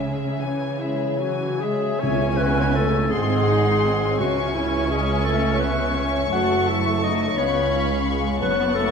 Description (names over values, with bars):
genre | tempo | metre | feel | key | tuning
classical, slow romantic movement for symphony orchestra | 56 BPM (dotted quarters) | 6/8 | uneven beats, rubato | C# minor | A4 = 440 Hz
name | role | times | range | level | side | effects
muted symphonic violin section | melody | 0.0-8.9 s | E5 to C#6 | -29 LUFS | left 3 dB | none
mellow clarinet | second line | 0.0-8.9 s | C#4 to F#5 | -26 LUFS | left 1 dB | none
muted symphonic violin section | second line | 0.0-8.9 s | G#4 to B5 | -31 LUFS | left 4 dB | none
muted studio viola section | accompaniment | 0.0-8.9 s | E3 to D#4 | -29 LUFS | equal | none
concert harp | arpeggios | 0.0-8.9 s | F#2 to E5 | -30 LUFS | left 11 dB | none
muted studio cello section | bass | 0.0-8.9 s | C#2 to C#3 | -27 LUFS | right 4 dB | none
muted studio double bass section | bass | 0.0-8.9 s | F#1 to C#2 | -28 LUFS | right 4 dB | none
mellow French horn section | sustained chords | 0.8-8.9 s | E3 to F#4 | -28 LUFS | left 3 dB | none
tam-tam | percussion | 2.0-4.9 s | none | -35 LUFS | left 2 dB | none
timpani | percussion | 2.0-3.1 s | C#3 | -29 LUFS | right 3 dB | none
room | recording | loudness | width
wet concert hall reverb, RT60 2.2 s | minimal, uncompressed stereo recording | -19 LUFS | side -6 dB against mid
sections
0.0-2.0 A section; 2.0-8.9 B section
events
band accent 2.0-2.8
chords
0.0 C#m; 3.1 G#7; 4.2 C#m; 6.3 F#m7; 7.4 C#7